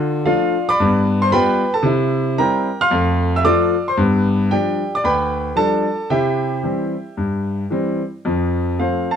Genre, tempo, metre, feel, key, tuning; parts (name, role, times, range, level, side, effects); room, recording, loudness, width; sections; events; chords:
jazz, stride piano; 113 BPM; 4/4; swing 62% on 8ths; F major; A4 = 444 Hz
clear grand piano; solo; 0.0-9.2 s; D2 to F6; -16 LUFS; equal
moderate studio reverb, RT60 0.8 s; close, detailed microphones; -16 LUFS; side -8 dB against mid
0.0-8.2 A section
0.0 Dm; 0.8 G7; 1.8 C7; 2.9 F; 4.0 G7; 6.1 C; 8.2 F